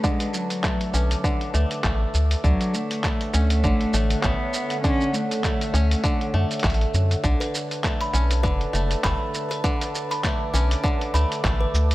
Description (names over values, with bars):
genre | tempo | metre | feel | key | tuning
folktronica | 100 BPM | 4/4 | swing 56% on 16ths | B minor | A4 = 440 Hz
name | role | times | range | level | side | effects
warm cello | melody | 0.0-6.9 s | F#3 to C#4 | -27 LUFS | equal | vintage 12-bit sampler grit
warbly tape-like pad | sustained chords | 0.0-11.9 s | D3 to D6 | -32 LUFS | right 1 dB | chorus, built-in reverb
bluegrass banjo | arpeggios | 0.0-11.9 s | D3 to C#4 | -29 LUFS | equal | low-pass filter, digital delay
electronic kick drum | drums | 0.0-11.6 s | none | -25 LUFS | equal | studio ambience
lo-fi sampler-style drum kit | drums | 0.0-11.9 s | handclaps, hi-hat, shaker | -30 LUFS | equal | studio ambience
round analog bass | bass | 0.9-11.9 s | F#1 to F#2 | -21 LUFS | equal | none
music box | second line | 7.4-11.7 s | B4 to B5 | -31 LUFS | left 1 dB | digital delay
room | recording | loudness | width
light reverb, digital ambience | none | -20 LUFS | side -17 dB against mid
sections
0.0-11.9 A section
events
none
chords
0.0 Bm9; 2.4 Dmaj7; 7.2 Bm9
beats
| 0.04 0.64 1.24 1.84 | 2.44 3.04 3.64 4.24 | 4.84 5.44 6.04 6.64 | 7.24 7.84 8.44 9.04 | 9.64 10.24 10.84 11.44